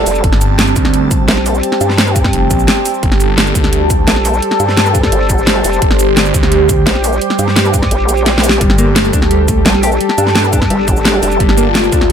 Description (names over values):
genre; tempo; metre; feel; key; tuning
dark technical drum and bass; 172 BPM; 4/4; straight; G minor; A4 = 442 Hz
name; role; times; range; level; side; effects
sweeping resonant pad; sustained chords; 0.0-12.1 s; G3 to A4; -17 LUFS; right 1 dB; chorus, phaser, sidechain pumping
vowel-sweep wobble bass; bass; 0.0-11.4 s; F1 to G2; -15 LUFS; equal; chorus
ethereal airy pad; texture; 0.0-12.1 s; G4 to A5; -18 LUFS; equal; ensemble chorus, built-in reverb, sidechain pumping
dubstep drum kit; drums; 0.1-12.1 s; cabasa, hi-hat, snare drum; -15 LUFS; equal; none
phased detuned saw bass; bass; 0.2-12.1 s; F1 to D2; -15 LUFS; equal; phaser, tube saturation, sidechain pumping
electronic kick drum; drums; 0.2-12.0 s; none; -15 LUFS; equal; none
mellow electric guitar; arpeggios; 8.6-12.1 s; G3 to G4; -18 LUFS; left 4 dB; sidechain pumping, ping-pong delay
room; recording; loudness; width
light reverb; none; -9 LUFS; side -8 dB against mid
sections
0.0-12.1 A section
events
kick drops out 7.9-8.6; drum fill 8.3-8.6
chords
0.0 Gmadd9